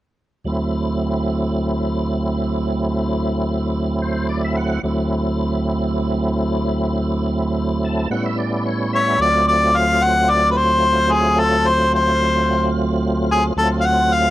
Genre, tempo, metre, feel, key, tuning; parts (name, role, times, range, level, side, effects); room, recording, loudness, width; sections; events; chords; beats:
blues; 110 BPM; 4/4; swing 54% on 16ths; D mixolydian; A4 = 441 Hz
tonewheel organ; accompaniment; 0.4-14.3 s; D2 to A5; -18 LUFS; right 1 dB; slow rotary speaker, chorus vibrato
clear harmonica; melody; 8.9-14.3 s; G#4 to F#5; -16 LUFS; left 2 dB; overdrive
studio reverb; dry, close 1970s-style studio recording; -16 LUFS; side -14 dB against mid
0.5-9.2 A section; 9.2-14.3 B section
tonewheel organ fill 3.7-4.8, 7.6-9.2
0.5 D7; 8.1 A7; 9.2 D7#9
| 0.46 1.00 1.55 2.10 | 2.65 3.19 3.74 4.29 | 4.83 5.38 5.93 6.48 | 7.02 7.57 8.12 8.66 | 9.21 9.75 10.30 10.84 | 11.39 11.94 12.48 13.03 | 13.57 14.12